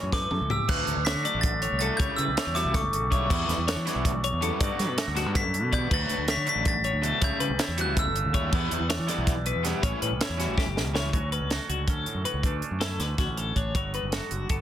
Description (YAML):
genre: math rock and midwest emo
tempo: 322 BPM (eighths)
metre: 7/8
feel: straight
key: D major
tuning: A4 = 445 Hz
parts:
  - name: twangy electric guitar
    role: accompaniment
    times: 0.0-14.6 s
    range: D2 to F#4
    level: -36 LUFS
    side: right 6 dB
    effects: wide subtle chorus
  - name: clean electric guitar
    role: arpeggios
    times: 0.0-14.6 s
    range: F#4 to D5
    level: -33 LUFS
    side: left 7 dB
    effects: tremolo
  - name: growling fingered electric bass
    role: bass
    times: 0.0-14.6 s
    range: F#1 to G3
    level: -30 LUFS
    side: equal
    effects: overdrive
  - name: glockenspiel with brass mallets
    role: melody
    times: 0.1-3.1, 5.4-8.4 s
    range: C#6 to B6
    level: -30 LUFS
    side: right 1 dB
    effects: slapback echo
  - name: compact cocktail drum kit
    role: drums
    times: 0.1-14.6 s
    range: crash cymbal, hi-hat, kick drum, snare drum, toms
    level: -28 LUFS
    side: equal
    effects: soft clipping on snare
  - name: raw garage guitar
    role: riff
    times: 0.7-11.1 s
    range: C#3 to E4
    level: -33 LUFS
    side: left 1 dB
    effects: overdrive
room: light reverb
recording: dense, heavily limited modern master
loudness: -24 LUFS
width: side -11 dB against mid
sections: 0.7-11.1 A section; 11.1-14.6 B section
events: drum fill 0.1-0.7, 10.6-11.1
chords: 0.0 A7; 0.7 Dmaj7; 2.0 A7/C#; 3.3 Em7; 4.6 Gmaj9; 5.9 Dmaj7; 7.2 A7/C#; 8.5 Em7; 9.8 A7; 11.1 Dmaj7; 12.4 Bm9/D; 13.8 Gmaj7